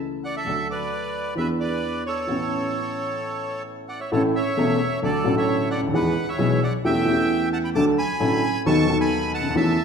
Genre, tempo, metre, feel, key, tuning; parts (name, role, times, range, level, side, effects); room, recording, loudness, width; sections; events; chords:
tango; 132 BPM; 4/4; rubato; A major; A4 = 440 Hz
dark upright piano; accompaniment; 0.0-9.8 s; E1 to A4; -22 LUFS; equal
bandoneon; melody; 0.2-9.8 s; A4 to D6; -26 LUFS; right 1 dB
wet scoring stage reverb, RT60 1.6 s; minimal, uncompressed stereo recording; -20 LUFS; side -6 dB against mid
0.0-4.1 A section; 4.1-9.8 A section
0.5 D; 1.4 E7; 2.3 Aadd9; 4.1 A; 5.0 D; 5.9 E; 6.8 A7/E; 7.8 D; 8.7 B7/D#